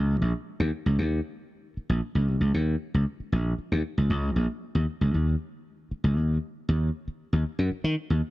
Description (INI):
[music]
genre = funk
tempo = 116 BPM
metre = 4/4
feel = straight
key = unclear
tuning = A4 = 440 Hz
[part]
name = slap bass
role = solo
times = 0.0-8.2 s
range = Bb1 to Eb3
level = -24 LUFS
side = equal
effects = none
[sound]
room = digital ambience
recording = dry, close 1970s-style studio recording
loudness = -24 LUFS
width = side -18 dB against mid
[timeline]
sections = 0.0-6.7 A section; 6.7-8.3 B section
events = none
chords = none